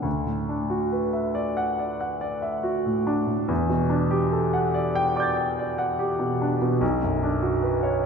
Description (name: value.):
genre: classical, impressionist solo piano.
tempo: 64-75 BPM.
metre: 4/4.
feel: rubato.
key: unclear.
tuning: A4 = 440 Hz.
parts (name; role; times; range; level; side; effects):
warm grand piano; solo; 0.0-8.1 s; B1 to A6; -22 LUFS; equal; none.
room: wet recital hall reverb, RT60 1.7 s.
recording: heard from further back in the room.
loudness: -22 LUFS.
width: side -6 dB against mid.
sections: 0.1-8.1 A section.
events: none.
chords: 0.1 D69; 3.5 Em11; 6.8 Bmadd9.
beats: | 0.06 0.94 1.81 2.67 | 3.50 4.33 5.17 6.00 | 6.82 7.63.